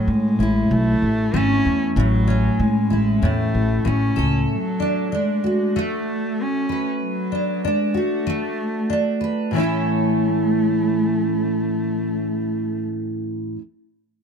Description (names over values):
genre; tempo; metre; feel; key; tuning
pop; 95 BPM; 4/4; swing 55% on 16ths; A major; A4 = 440 Hz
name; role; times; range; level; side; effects
dark cello; melody; 0.0-12.8 s; F#3 to C#4; -24 LUFS; equal; plate reverb, tape echo
fingerpicked steel-string acoustic guitar; accompaniment; 0.0-13.6 s; A2 to B4; -20 LUFS; equal; double-tracked left and right, plate reverb
upright bass; bass; 0.1-4.4 s; G#1 to A2; -22 LUFS; equal; none
room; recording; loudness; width
moderate booth ambience, RT60 0.2 s; none; -18 LUFS; side -6 dB against mid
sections
0.0-9.5 A section; 9.5-12.1 B section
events
none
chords
0.0 A; 4.5 D6; 9.5 A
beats
0.07 0.70 1.33 | 1.96 2.59 3.22 3.85 | 4.48 5.11 5.74 6.38 | 7.01 7.64 8.27 8.90 | 9.54 10.17 10.80 11.44